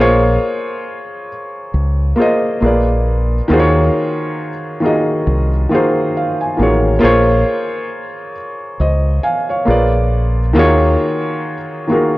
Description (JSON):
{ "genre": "lo-fi hip hop", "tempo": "68 BPM", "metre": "4/4", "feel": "swing 56% on 16ths", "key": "Bb minor", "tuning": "A4 = 440 Hz", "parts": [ { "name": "felt-muted upright piano", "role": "accompaniment", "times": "0.0-12.2 s", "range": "Eb3 to Ab5", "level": "-14 LUFS", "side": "equal", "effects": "low-pass filter" }, { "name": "deep dub fingered electric bass", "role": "bass", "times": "0.0-11.0 s", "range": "A1 to Eb2", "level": "-15 LUFS", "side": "equal", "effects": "none" } ], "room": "moderate plate reverb, RT60 2.7 s", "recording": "worn, warbling old tape, cassette tape, warbly pitch drift", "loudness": "-13 LUFS", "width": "side -18 dB against mid", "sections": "0.0-12.2 A section", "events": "felt piano fill 5.7-7.0", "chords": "0.0 Bbm9; 2.6 Bb7b9; 3.5 Ebm11; 7.0 Bbm9; 9.7 Bb7b9; 10.6 Ebm11", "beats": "0.85 1.73 2.61 | 3.50 4.38 5.26 6.14 | 7.03 7.91 8.79 9.67 | 10.55 11.44" }